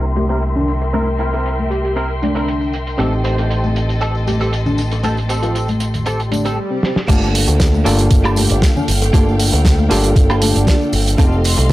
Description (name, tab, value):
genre	nu-disco, nu disco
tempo	117 BPM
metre	4/4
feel	straight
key	G minor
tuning	A4 = 437 Hz
part	overdriven reed electric piano	accompaniment	0.0-11.7 s	A3 to A4	-23 LUFS	equal	sidechain pumping, tape echo
part	dark studio string section	sustained chords	0.0-11.7 s	A4 to C6	-26 LUFS	left 1 dB	vintage 12-bit sampler grit, sidechain pumping
part	direct-recorded clean electric guitar	riff	0.0-11.7 s	Bb3 to C5	-24 LUFS	right 2 dB	ensemble chorus, low-pass filter
part	picked electric bass with an envelope filter	bass	0.0-11.7 s	F1 to D2	-17 LUFS	equal	tube saturation
part	tambourine, congas and bongos	percussion	0.1-11.7 s	none	-24 LUFS	left 3 dB	none
part	soft octave-layered synth lead	melody	0.2-10.9 s	C4 to G4	-24 LUFS	equal	chorus, analog delay
part	damped 70s drum kit	drums	0.2-11.7 s	crash cymbal, hi-hat, snare drum, woodblock	-21 LUFS	right 2 dB	low-pass filter on hats, low-pass filter on cymbals, low-pass filter on snare, low-pass filter on perc, low-pass filter on room
part	swell	sound effects	6.3-7.1 s	none	-26 LUFS	right 1 dB	none
part	electronic kick drum	drums	7.1-11.7 s	none	-13 LUFS	equal	overdrive
room	studio reverb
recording	dry, gritty hardware recording, low-pass filter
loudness	-13 LUFS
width	side -16 dB against mid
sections	0.0-7.1 A section; 7.1-11.7 B section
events	filter sweep on clean electric guitar 0.0-7.1; filter sweep 0.0-7.1; swell 6.3-7.1; drum fill 6.8; drop 7.1-11.7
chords	0.0 C7; 3.0 Am7b5; 7.1 Gm9; 11.2 F7